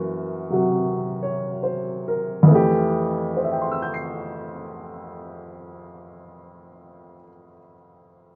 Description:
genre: solo jazz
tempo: 69-75 BPM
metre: 4/4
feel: swing 68% on 8ths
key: F major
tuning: A4 = 440 Hz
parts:
  - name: warm upright piano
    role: solo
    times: 0.0-8.4 s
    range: F2 to C7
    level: -23 LUFS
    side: equal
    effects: none
room: light reverb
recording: none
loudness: -22 LUFS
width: mono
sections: 0.0-2.5 A section; 2.5-6.0 B section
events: slowing down 0.0-2.5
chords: 0.0 Gb7; 2.5 Fmaj9

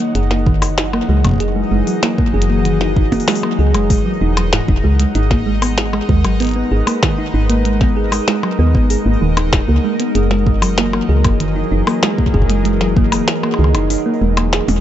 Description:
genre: IDM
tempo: 96 BPM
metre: 4/4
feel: straight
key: unclear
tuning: A4 = 439 Hz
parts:
  - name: warbly tape-like pad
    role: sustained chords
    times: 0.0-14.8 s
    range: D#3 to F#5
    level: -21 LUFS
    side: left 1 dB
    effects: chorus, built-in reverb
  - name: thumb-piano-like synth pluck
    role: arpeggios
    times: 0.0-14.8 s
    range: G#2 to G#4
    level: -19 LUFS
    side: right 2 dB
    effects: chorus, digital delay
  - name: glitchy drum kit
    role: drums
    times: 0.0-14.8 s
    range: hi-hat, percussion blips, snare drum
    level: -20 LUFS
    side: left 1 dB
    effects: digital delay
  - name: bubbling stepped-filter texture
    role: texture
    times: 0.0-14.8 s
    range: D#4 to D#5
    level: -28 LUFS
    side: equal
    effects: chorus, built-in reverb
  - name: woody FM bass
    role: bass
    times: 0.2-14.8 s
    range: D#1 to D#2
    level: -16 LUFS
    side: equal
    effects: none
  - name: electronic kick drum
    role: drums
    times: 0.5-13.1 s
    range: none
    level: -16 LUFS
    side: equal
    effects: none
room: light reverb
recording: dark, warm production, nothing above 7.9 kHz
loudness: -13 LUFS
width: side -11 dB against mid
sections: 0.0-14.8 A section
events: kick drops out 13.9-14.8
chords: 0.2 F#7; 5.2 G#m7; 10.2 F#7

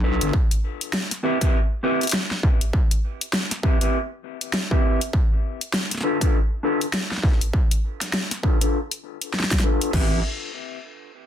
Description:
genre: glitch hop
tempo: 100 BPM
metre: 4/4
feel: swing 60% on 16ths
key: unclear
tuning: A4 = 437 Hz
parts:
  - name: mellow electric guitar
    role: stabs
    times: 0.0-10.2 s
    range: C4 to B4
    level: -26 LUFS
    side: left 1 dB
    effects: sidechain pumping, low-pass filter, ping-pong delay
  - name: wobble bass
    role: bass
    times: 0.0-0.3, 9.9-10.2 s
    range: G1 to B1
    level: -24 LUFS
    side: equal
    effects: chorus
  - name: dubstep drum kit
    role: drums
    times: 0.2-10.1 s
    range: crash cymbal, hi-hat, snare drum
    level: -25 LUFS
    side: left 1 dB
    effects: small room ambience
  - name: electronic kick drum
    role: drums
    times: 0.3-10.1 s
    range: none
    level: -20 LUFS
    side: equal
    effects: distortion, small room ambience
room: little or no reverb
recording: dense, heavily limited modern master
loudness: -20 LUFS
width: side -10 dB against mid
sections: 0.0-9.9 A section; 9.9-11.3 B section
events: filter sweep on clean electric guitar 0.0-9.9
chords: 0.3 Cmaj7; 5.1 Dm6; 9.9 Am7

